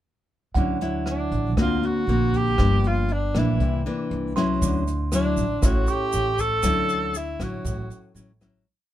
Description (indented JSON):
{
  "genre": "bossa nova",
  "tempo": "118 BPM",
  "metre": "4/4",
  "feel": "straight",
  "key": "D major",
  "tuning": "A4 = 440 Hz",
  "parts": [
    { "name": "bell-like tine electric piano", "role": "accompaniment", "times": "0.5-8.7 s", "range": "F#5 to C#6", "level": "-33 LUFS", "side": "right 8 dB", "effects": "none" },
    { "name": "upright bass", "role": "bass", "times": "0.5-8.6 s", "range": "G1 to D2", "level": "-25 LUFS", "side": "right 1 dB", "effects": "none" },
    { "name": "nylon-string guitar", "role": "accompaniment", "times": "0.6-8.7 s", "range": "G2 to F#4", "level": "-26 LUFS", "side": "left 3 dB", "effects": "none" },
    { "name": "jazz brush drum kit", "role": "drums", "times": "0.6-8.5 s", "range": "hi-hat, kick drum, rim click", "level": "-29 LUFS", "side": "equal", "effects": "none" },
    { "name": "mellow tenor saxophone", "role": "melody", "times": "1.1-8.2 s", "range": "D4 to A4", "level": "-26 LUFS", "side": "right 1 dB", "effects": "none" },
    { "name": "tube shaker", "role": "percussion", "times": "4.6-8.7 s", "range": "none", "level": "-37 LUFS", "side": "right 8 dB", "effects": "none" }
  ],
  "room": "light reverb",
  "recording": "none",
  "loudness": "-21 LUFS",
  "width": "side -12 dB against mid",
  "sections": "0.6-8.7 A section",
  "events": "fade-out 6.6-8.7",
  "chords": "0.6 Dmaj9; 1.6 Daug7; 2.6 Gm7; 3.6 C9; 4.6 Dmaj9"
}